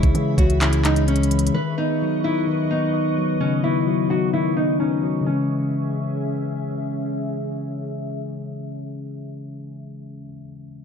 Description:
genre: hip hop, trap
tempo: 129 BPM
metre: 4/4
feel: half-time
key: C# minor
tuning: A4 = 440 Hz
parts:
  - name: nylon-string guitar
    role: melody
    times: 0.0-6.6 s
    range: C#4 to B4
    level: -24 LUFS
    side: right 1 dB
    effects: low-pass filter, digital delay
  - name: mellow tine electric piano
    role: accompaniment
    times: 0.0-10.8 s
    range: C#3 to D#5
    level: -23 LUFS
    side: left 3 dB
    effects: phaser, low-pass filter
  - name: glassy FM pad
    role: sustained chords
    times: 0.0-9.7 s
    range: C#4 to C#6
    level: -32 LUFS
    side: equal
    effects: ensemble chorus, built-in reverb, low-pass filter
  - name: long sustained 808-style bass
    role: bass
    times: 0.0-1.5 s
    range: C#2 to C#3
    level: -21 LUFS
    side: right 1 dB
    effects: none
  - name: trap drum kit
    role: drums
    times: 0.0-1.5 s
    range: handclaps, hi-hat, kick drum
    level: -22 LUFS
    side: right 1 dB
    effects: none
room: light reverb, digital ambience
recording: dark, warm production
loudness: -19 LUFS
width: side -7 dB against mid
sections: 0.0-5.3 A section; 5.3-9.0 B section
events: none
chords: 0.0 C#m; 1.5 Badd9; 5.3 C#m

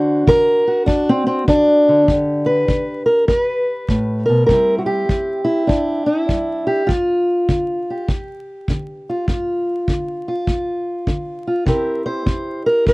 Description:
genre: acoustic country blues, solo or duo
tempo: 100 BPM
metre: 4/4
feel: swing 65% on 8ths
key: unclear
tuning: A4 = 440 Hz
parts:
  - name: fingerpicked steel-string acoustic guitar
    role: melody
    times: 0.0-12.9 s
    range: D2 to C5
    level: -16 LUFS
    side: equal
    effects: none
  - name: kick drum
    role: drums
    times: 0.3-12.9 s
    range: none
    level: -20 LUFS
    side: equal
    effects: none
room: light reverb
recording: dry, close 1970s-style studio recording, vinyl crackle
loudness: -15 LUFS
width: side -24 dB against mid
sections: 0.0-2.1 A section; 2.1-12.9 B section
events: steel-string acoustic guitar solo 0.0-2.1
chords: 0.0 D7; 2.1 G; 4.5 C; 6.9 G5; 11.7 C7

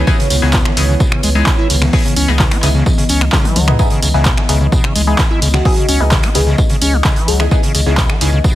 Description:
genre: acid house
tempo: 129 BPM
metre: 4/4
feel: straight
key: C# minor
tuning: A4 = 443 Hz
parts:
  - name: dark analog pad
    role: sustained chords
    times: 0.0-8.6 s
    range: E3 to D#5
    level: -22 LUFS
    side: equal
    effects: chorus, sidechain pumping
  - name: band-passed chord stab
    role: stabs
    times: 0.0-8.6 s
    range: B3 to G#4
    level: -22 LUFS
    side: left 2 dB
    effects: phaser, wide subtle chorus, digital delay
  - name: saturated sub bass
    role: bass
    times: 0.0-8.4 s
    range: C#2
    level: -15 LUFS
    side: equal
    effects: sidechain pumping
  - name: acid bass, square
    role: riff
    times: 0.1-8.6 s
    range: B2 to E4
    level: -19 LUFS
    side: equal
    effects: overdrive, digital delay
  - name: electronic kick drum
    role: drums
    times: 0.1-8.5 s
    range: none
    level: -14 LUFS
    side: equal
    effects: none
  - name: raw garage drum kit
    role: drums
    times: 0.1-8.6 s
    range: hi-hat, snare drum, tambourine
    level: -25 LUFS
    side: right 1 dB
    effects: sidechain pumping on hats, high-pass filter on hats, high-pass filter on snare, sidechain pumping on perc, high-pass filter on perc, high-pass filter on room
  - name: punchy analog drum machine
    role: drums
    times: 0.3-8.3 s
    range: finger snaps, handclaps, hi-hat, toms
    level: -18 LUFS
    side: equal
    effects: none
  - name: bell-like FM electric piano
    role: melody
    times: 5.5-7.5 s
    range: F#4 to G#4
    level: -23 LUFS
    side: left 4 dB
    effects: chorus, phaser, vintage 12-bit sampler grit, ping-pong delay
room: little or no reverb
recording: heavily compressed radio sound, multiband compression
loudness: -10 LUFS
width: side -14 dB against mid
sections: 0.0-8.6 A section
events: drum fill 3.3-3.8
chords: 0.0 C#m7

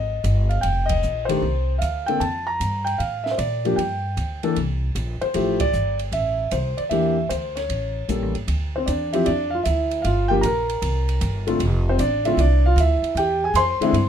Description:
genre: jazz piano trio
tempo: 153 BPM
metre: 4/4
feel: swing 67% on 8ths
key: F major, D minor from 8.5 s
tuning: A4 = 440 Hz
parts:
  - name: dark concert grand piano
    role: melody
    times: 0.0-14.1 s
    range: D3 to B#5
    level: -22 LUFS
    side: equal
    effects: none
  - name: upright bass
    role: bass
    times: 0.0-14.1 s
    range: F1 to Bb2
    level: -23 LUFS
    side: equal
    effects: none
  - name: compact cocktail drum kit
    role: drums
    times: 0.2-14.1 s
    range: hi-hat, kick drum, ride cymbal, snare drum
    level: -34 LUFS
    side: right 4 dB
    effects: none
room: light reverb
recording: minimal, uncompressed stereo recording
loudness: -19 LUFS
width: side -9 dB against mid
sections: 0.0-8.5 A section; 8.5-14.1 B section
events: band accent 0.8, 5.5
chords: 0.0 Db (rootless); 0.6 F7sus2; 2.2 Bbmaj7; 3.8 G5; 4.6 Bbsus2; 5.4 Fmaj9 (rootless); 6.9 Em7b5; 7.7 A7b9; 8.5 Dm9; 10.0 Gm7; 10.8 C5; 11.6 F6; 13.2 Eaug

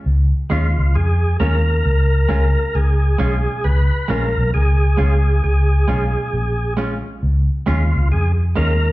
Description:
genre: roots reggae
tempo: 67 BPM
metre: 4/4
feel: swing 62% on 16ths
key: unclear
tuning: A4 = 437 Hz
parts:
  - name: vintage muted fingered electric bass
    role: bass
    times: 0.1-8.9 s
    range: A#1 to E#2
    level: -16 LUFS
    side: equal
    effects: none
  - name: percussive tonewheel organ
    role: melody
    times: 0.5-8.9 s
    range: E#4 to B4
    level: -23 LUFS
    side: equal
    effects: overdrive, fast rotary speaker
  - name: semi-hollow electric guitar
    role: accompaniment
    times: 0.5-8.7 s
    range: G#3 to E#4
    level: -25 LUFS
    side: right 2 dB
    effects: none
room: wet large studio reverb, RT60 1.3 s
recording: band playing live in one room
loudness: -15 LUFS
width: side -18 dB against mid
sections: 0.1-8.9 A section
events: none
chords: 0.1 C#

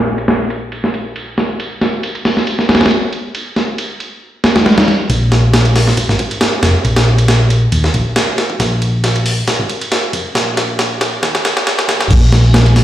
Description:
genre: breakbeat, breaks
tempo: 137 BPM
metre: 4/4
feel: swing 54% on 16ths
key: unclear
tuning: A4 = 440 Hz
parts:
  - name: hollow-body short-scale picked electric bass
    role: bass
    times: 0.0-12.8 s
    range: F1 to Eb2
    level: -13 LUFS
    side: equal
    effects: low-pass filter
  - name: breakbeat sampler-style drum kit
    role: drums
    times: 0.2-12.8 s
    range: crash cymbal, hi-hat, kick drum, ride cymbal, snare drum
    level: -13 LUFS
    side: equal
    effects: high-pass filter on cymbals, low-pass filter on cymbals, high-pass filter on snare, low-pass filter on snare, high-pass filter on hats, low-pass filter on hats, high-pass filter on kick, low-pass filter on kick, high-pass filter on room, low-pass filter on room
room: moderate digital room reverb, RT60 1.1 s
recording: played on a big sound system in a bare room, stone room reverb, high-pass filter, low-pass filter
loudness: -11 LUFS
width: side -12 dB against mid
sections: 0.0-5.1 A section; 5.1-12.1 B section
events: filter sweep 0.0-5.1, 5.1-12.1; build-up 5.1-12.1; drum fill 8.6-12.1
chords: none

